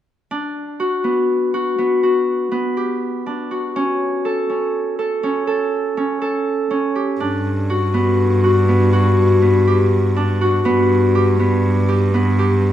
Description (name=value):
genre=contemporary instrumental, chamber music in an uneven meter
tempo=122 BPM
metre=7/4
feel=straight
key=G lydian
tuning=A4 = 440 Hz
part: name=Celtic harp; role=arpeggios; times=0.3-12.7 s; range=B3 to A4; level=-17 LUFS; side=equal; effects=none
part: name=warm cello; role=bass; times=7.2-12.7 s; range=G2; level=-16 LUFS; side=equal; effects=none
room=moderate scoring stage reverb, RT60 2.0 s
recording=none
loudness=-15 LUFS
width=side -11 dB against mid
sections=0.3-12.7 A section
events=none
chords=0.3 Gmaj7; 3.8 A; 7.2 Gmaj7; 10.7 G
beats=| 0.31 0.80 1.29 1.79 2.28 2.77 3.26 | 3.76 4.25 4.74 5.24 5.73 6.22 6.72 | 7.21 7.70 8.20 8.69 9.18 9.67 10.16 | 10.66 11.15 11.64 12.13 12.62